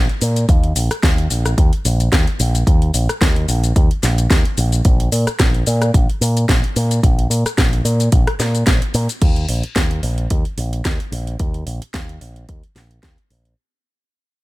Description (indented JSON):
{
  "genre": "nu-disco, nu disco",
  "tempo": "110 BPM",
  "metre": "4/4",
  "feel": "swing 55% on 16ths",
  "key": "unclear",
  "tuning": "A4 = 439 Hz",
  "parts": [
    { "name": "picked electric bass with an envelope filter", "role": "bass", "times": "0.0-13.5 s", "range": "Bb1 to Bb2", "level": "-17 LUFS", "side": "equal", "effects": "none" },
    { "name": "house drum kit", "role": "drums", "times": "0.1-13.6 s", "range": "crash cymbal, hi-hat, rim click, shaker, snare drum", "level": "-21 LUFS", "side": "equal", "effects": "studio reverb" },
    { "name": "electronic kick drum", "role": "drums", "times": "0.5-13.2 s", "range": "none", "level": "-16 LUFS", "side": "equal", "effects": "studio reverb" }
  ],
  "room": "little or no reverb",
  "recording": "none",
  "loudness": "-14 LUFS",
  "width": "side -19 dB against mid",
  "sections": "0.0-9.2 A section; 9.2-13.6 B section",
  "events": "drop 0.0-9.2; fade-out 9.2-13.6",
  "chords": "none",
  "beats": "| 0.49 1.03 1.58 2.12 | 2.67 3.21 3.76 4.30 | 4.85 5.40 5.94 6.49 | 7.03 7.58 8.12 8.67 | 9.21 9.76 10.30 10.85 | 11.40 11.94 12.49 13.03"
}